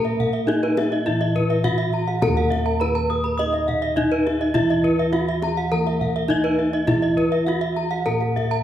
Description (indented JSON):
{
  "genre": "Balinese gamelan",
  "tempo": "103 BPM",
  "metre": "4/4",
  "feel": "straight",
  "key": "unclear",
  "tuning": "A4 = 440 Hz",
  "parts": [
    { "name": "gamelan-type bronze metallophone", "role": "melody", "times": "0.0-8.6 s", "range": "Eb4 to Eb5", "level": "-23 LUFS", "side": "equal", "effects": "none" },
    { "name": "gamelan-type bronze metallophone", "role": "accompaniment", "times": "0.0-8.6 s", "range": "Fb3 to Eb4", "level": "-28 LUFS", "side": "right 2 dB", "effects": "none" },
    { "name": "gamelan-type bronze metallophone", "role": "arpeggios", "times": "0.0-8.5 s", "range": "Cb5-40c to Eb6", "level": "-27 LUFS", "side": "left 6 dB", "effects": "none" },
    { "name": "gamelan-type bronze metallophone", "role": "arpeggios", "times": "0.0-8.6 s", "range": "Cb5-40c to Cb6-40c", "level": "-27 LUFS", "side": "right 4 dB", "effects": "none" },
    { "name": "gamelan-type bossed gongs", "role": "bass", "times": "0.0-8.6 s", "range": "Eb2 to Bb4-45c", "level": "-25 LUFS", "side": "equal", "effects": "none" },
    { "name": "kendang", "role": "percussion", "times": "0.2-8.6 s", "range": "none", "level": "-30 LUFS", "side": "left 1 dB", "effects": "none" }
  ],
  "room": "wet recital hall reverb, RT60 1.6 s",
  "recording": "recorded in a church or concert hall",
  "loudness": "-18 LUFS",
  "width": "side -11 dB against mid",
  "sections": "0.0-8.6 A section",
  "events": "none",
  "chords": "none",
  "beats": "0.48 1.06 1.65 | 2.23 2.81 3.39 3.98 | 4.56 5.14 5.72 6.30 | 6.89 7.47 8.07"
}